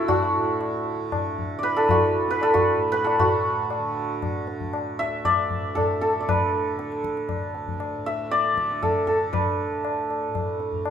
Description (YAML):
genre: indian classical, Hindustani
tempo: 117 BPM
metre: 3/4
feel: straight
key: D raga bhupali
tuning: A4 = 440 Hz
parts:
  - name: santur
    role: melody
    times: 0.0-10.9 s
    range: E4 to E5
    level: -23 LUFS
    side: right 1 dB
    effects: none
  - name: tanpura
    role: drone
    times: 0.0-10.9 s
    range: D2 to D3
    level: -34 LUFS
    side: right 2 dB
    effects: none
  - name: tabla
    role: percussion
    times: 0.1-10.9 s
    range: none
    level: -28 LUFS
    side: left 4 dB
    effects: none
room: moderate recital hall reverb, RT60 1.6 s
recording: minimal, uncompressed stereo recording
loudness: -22 LUFS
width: side -8 dB against mid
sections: 0.0-3.2 A section; 3.2-10.9 B section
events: none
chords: none